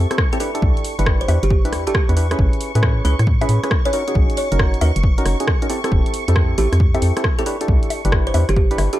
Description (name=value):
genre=UK garage, two-step garage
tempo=136 BPM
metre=4/4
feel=swing 66% on 16ths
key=unclear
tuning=A4 = 440 Hz
part: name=soft string machine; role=sustained chords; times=0.0-9.0 s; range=C#6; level=-32 LUFS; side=equal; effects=phaser, ensemble chorus, sidechain pumping
part: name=percussive organ stab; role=stabs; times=0.0-9.0 s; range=C4 to B4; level=-24 LUFS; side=equal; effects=chorus
part: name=hollow knocking FM bass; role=bass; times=0.0-8.9 s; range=F1 to A2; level=-17 LUFS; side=equal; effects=none
part: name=punchy analog drum machine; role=drums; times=0.1-9.0 s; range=bongos, hi-hat, rim click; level=-25 LUFS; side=equal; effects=none
part: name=electronic kick drum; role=drums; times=0.2-8.7 s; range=none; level=-18 LUFS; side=equal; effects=none
part: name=kalimba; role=melody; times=0.3-9.0 s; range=G4 to C#5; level=-26 LUFS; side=right 2 dB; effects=none
room=digital ambience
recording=dark, warm production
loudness=-15 LUFS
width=side -14 dB against mid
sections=0.0-9.0 A section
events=none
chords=0.4 Cmaj9 (rootless); 2.4 Amaj9; 3.9 Bmaj9; 5.7 Fmaj9; 7.5 Cmaj9 (rootless)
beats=0.18 | 0.62 1.06 1.50 1.95 | 2.39 2.83 3.27 3.71 | 4.15 4.59 5.04 5.48 | 5.92 6.36 6.80 7.24 | 7.68 8.12 8.56